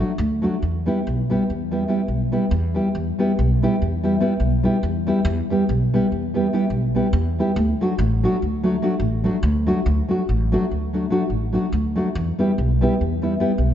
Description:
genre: balkan folk, Balkan wedding band.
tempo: 287 BPM (eighths).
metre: 11/8.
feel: straight.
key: E minor.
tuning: A4 = 441 Hz.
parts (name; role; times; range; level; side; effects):
nylon-string guitar; accompaniment; 0.0-13.5 s; F#3 to G4; -21 LUFS; equal; none.
upright bass; bass; 0.2-13.7 s; A1 to E2; -22 LUFS; equal; none.
room: moderate scoring stage reverb, RT60 1.9 s.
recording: nothing above 7.7 kHz.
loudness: -18 LUFS.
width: side -10 dB against mid.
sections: 0.0-2.9 A section; 2.9-13.7 B section.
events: none.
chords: 0.0 D; 0.6 Em; 7.6 D; 12.1 Em.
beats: 0.20 0.41 | 0.62 0.83 1.05 1.26 1.47 1.68 1.89 2.10 2.32 2.53 2.74 | 2.95 3.16 3.37 3.58 3.79 4.00 4.21 4.42 4.63 4.84 5.05 | 5.26 5.47 5.68 5.89 6.10 6.31 6.52 6.73 6.94 7.15 7.36 | 7.56 7.77 7.98 8.19 8.40 8.61 8.82 9.03 9.23 9.44 9.65 | 9.86 10.07 10.28 10.48 10.69 10.90 11.11 11.31 11.52 11.73 11.94 | 12.15 12.35 12.56 12.77 12.98 13.18 13.39 13.60.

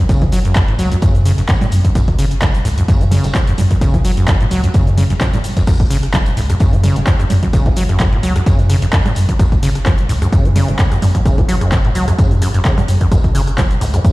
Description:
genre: acid house.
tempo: 129 BPM.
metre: 4/4.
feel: swing 54% on 16ths.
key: F# minor.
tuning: A4 = 439 Hz.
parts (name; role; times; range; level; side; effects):
deep acid bass; riff; 0.0-14.1 s; E2 to F#3; -17 LUFS; equal; tube saturation.
warm sub bass; bass; 0.1-14.1 s; E1 to F#2; -17 LUFS; equal; sidechain pumping.
deep reggae drum kit; drums; 0.1-14.1 s; hi-hat, snare drum, tambourine; -35 LUFS; left 1 dB; sidechain pumping on hats, high-pass filter on hats, high-pass filter on snare, sidechain pumping on perc, high-pass filter on perc, high-pass filter on room.
electronic kick drum; drums; 0.1-14.1 s; none; -14 LUFS; equal; none.
punchy analog drum machine; drums; 0.1-14.1 s; cabasa, congas, crash cymbal, handclaps, hi-hat, rim click; -22 LUFS; right 1 dB; none.
room: light reverb, small room ambience.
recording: played on a big sound system in a bare room, stone room reverb.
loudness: -11 LUFS.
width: side -20 dB against mid.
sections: 0.0-14.1 A section.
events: none.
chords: 0.0 F#5.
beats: | 0.09 0.56 1.02 1.49 | 1.95 2.42 2.88 3.35 | 3.81 4.28 4.74 5.21 | 5.67 6.14 6.60 7.07 | 7.53 8.00 8.46 8.93 | 9.39 9.86 10.32 10.79 | 11.26 11.72 12.19 12.65 | 13.12 13.58 14.05.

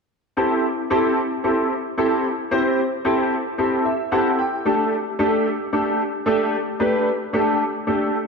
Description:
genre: pop.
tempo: 112 BPM.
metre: 4/4.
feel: straight.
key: A minor.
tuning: A4 = 440 Hz.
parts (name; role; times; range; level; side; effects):
warm concert grand piano; accompaniment; 0.4-8.2 s; A3 to G5; -18 LUFS; equal; ensemble chorus.
room: wet lush hall reverb, RT60 1.9 s, studio reverb.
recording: dreamy mix soaked in reverb.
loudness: -19 LUFS.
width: side -4 dB against mid.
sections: 0.4-8.3 A section.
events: grand piano fill 3.6-4.7.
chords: 0.4 Am7; 4.7 Dsus4.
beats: | 0.37 0.91 1.44 1.98 | 2.51 3.05 3.58 4.12 | 4.66 5.19 5.73 6.26 | 6.80 7.33 7.87.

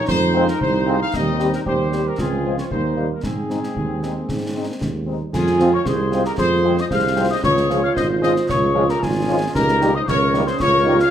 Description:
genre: military-style march for wind band.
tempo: 114 BPM.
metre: 2/4.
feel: straight.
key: unclear.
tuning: A4 = 440 Hz.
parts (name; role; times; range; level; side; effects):
mellow trumpet section; melody; 0.0-11.1 s; Ab4 to F5; -24 LUFS; left 1 dB; none.
dark woodwind section; second line; 0.0-11.1 s; C4 to Db5; -27 LUFS; left 1 dB; none.
mellow tuba; bass; 0.1-11.0 s; Ab1 to Ab2; -22 LUFS; right 3 dB; none.
concert snare drum, concert bass drum and clash cymbals; drums; 0.1-11.1 s; none; -27 LUFS; left 1 dB; none.
warm French horn section; accompaniment; 0.3-11.0 s; G3 to G4; -26 LUFS; left 4 dB; none.
warm trombone section; sustained chords; 0.4-11.0 s; Eb3 to C4; -26 LUFS; right 2 dB; none.
dark euphonium; second line; 3.8-11.1 s; G3 to Ab4; -23 LUFS; right 3 dB; none.
mellow hollow piccolo; second line; 5.3-11.1 s; Ab5 to F6; -23 LUFS; left 4 dB; none.
room: moderate large studio reverb, RT60 0.9 s.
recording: none.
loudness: -17 LUFS.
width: side -10 dB against mid.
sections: 0.0-5.3 A section; 5.3-11.1 B section.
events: none.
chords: 0.1 Fm; 1.1 Cm/Eb; 2.2 Dbmaj7; 2.7 Eb; 3.2 Ab; 5.3 Fm; 7.4 Db; 9.5 Eb7/Db.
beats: | 0.08 0.60 | 1.13 1.66 | 2.18 2.71 | 3.23 3.76 | 4.29 4.81 | 5.34 5.86 | 6.39 6.92 | 7.44 7.97 | 8.49 9.02 | 9.55 10.07 | 10.60.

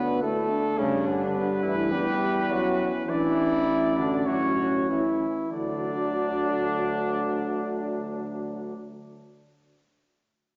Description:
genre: classical, brass quintet.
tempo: 94-107 BPM.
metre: 4/4.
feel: straight.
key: D major.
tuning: A4 = 438 Hz.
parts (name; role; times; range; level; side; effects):
warm trumpet; melody; 0.0-8.7 s; D4 to D5; -36 LUFS; equal; none.
warm flugelhorn; second line; 0.0-8.7 s; C#4 to D5; -33 LUFS; equal; none.
clear French horn; accompaniment; 0.0-8.7 s; F#3 to F#4; -36 LUFS; equal; none.
warm euphonium; accompaniment; 0.0-8.7 s; C#3 to B3; -31 LUFS; equal; none.
clear tuba; bass; 0.0-8.7 s; A1 to G2; -32 LUFS; equal; none.
room: wet recital hall reverb, RT60 1.9 s.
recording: nothing above 7.5 kHz.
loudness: -26 LUFS.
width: mono.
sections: 0.0-5.5 A section; 5.5-8.0 B section.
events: slowing down 0.0-5.5.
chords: 0.0 D5; 0.8 G; 1.9 Em; 3.1 Asus4; 4.3 A; 5.5 D.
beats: 0.22 | 0.79 1.36 1.93 2.51 | 3.10 3.68 4.28 4.89 | 5.52 6.14 6.76 7.37.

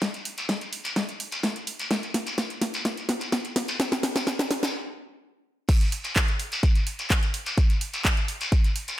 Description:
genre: house.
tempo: 127 BPM.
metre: 4/4.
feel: straight.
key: none.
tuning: none.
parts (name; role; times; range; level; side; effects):
electronic kick drum; drums; 0.0-8.6 s; none; -22 LUFS; equal; high-pass filter on kick.
pop drum kit; drums; 0.0-9.0 s; crash cymbal, handclaps, hi-hat, snare drum; -27 LUFS; equal; none.
shekere; percussion; 0.0-9.0 s; none; -32 LUFS; left 1 dB; none.
room: light reverb, digital ambience.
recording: none.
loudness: -24 LUFS.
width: side -14 dB against mid.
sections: 0.0-5.7 A section; 5.7-9.0 B section.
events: build-up 0.0-5.7; drum fill 0.0-4.7; stop 4.7-5.7; drop 5.7-9.0.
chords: none.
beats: | 0.02 0.49 0.96 1.44 | 1.91 2.38 2.85 3.32 | 3.80 4.27 4.74 5.21 | 5.69 6.16 6.63 7.10 | 7.58 8.05 8.52.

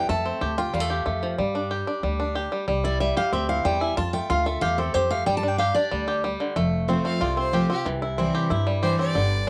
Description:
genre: bluegrass.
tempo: 185 BPM.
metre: 4/4.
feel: straight.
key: unclear.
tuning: A4 = 440 Hz.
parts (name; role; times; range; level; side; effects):
picked steel-string acoustic guitar; accompaniment; 0.0-9.5 s; F2 to A5; -28 LUFS; equal; cassette tape.
bluegrass banjo; arpeggios; 0.0-9.5 s; D3 to G4; -28 LUFS; equal; cassette tape.
upright bass; bass; 0.0-9.5 s; F1 to G2; -31 LUFS; equal; none.
clear fiddle; second line; 7.1-9.5 s; G4 to F5; -31 LUFS; equal; cassette tape.
room: light reverb.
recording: home recording on cassette.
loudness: -24 LUFS.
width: mono.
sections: 0.0-6.6 A section; 6.6-9.5 A section.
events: steel-string acoustic guitar solo 0.0-6.6; fiddle solo 6.6-9.5.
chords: 0.1 F; 1.4 G5; 2.7 C; 4.0 F; 5.3 G5; 6.6 F; 7.9 C.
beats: | 0.09 0.42 0.74 1.06 | 1.39 1.71 2.03 2.36 | 2.68 3.00 3.33 3.65 | 3.97 4.30 4.62 4.95 | 5.27 5.59 5.92 6.24 | 6.56 6.89 7.21 7.53 | 7.86 8.18 8.51 8.83 | 9.15 9.48.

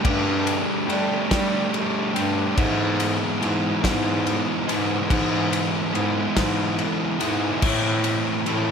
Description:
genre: post-rock.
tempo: 48 BPM (dotted quarters).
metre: 6/8.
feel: straight.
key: unclear.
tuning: A4 = 440 Hz.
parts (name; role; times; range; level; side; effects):
fuzz guitar; riff; 0.0-8.7 s; G#2 to G4; -23 LUFS; right 1 dB; distortion, slapback echo.
clear bass clarinet; bass; 0.0-8.7 s; G2 to G3; -26 LUFS; equal; none.
loose indie drum kit; drums; 0.0-8.7 s; crash cymbal, kick drum, ride cymbal, snare drum; -26 LUFS; left 1 dB; none.
room: moderate lush hall reverb, RT60 2.3 s.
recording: big arena sound.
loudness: -20 LUFS.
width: side -6 dB against mid.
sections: 0.0-8.7 A section.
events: none.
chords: 0.0 Gsus2; 2.6 E/G#; 7.6 Am.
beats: | 0.05 1.31 | 2.57 3.83 | 5.09 6.36 | 7.62.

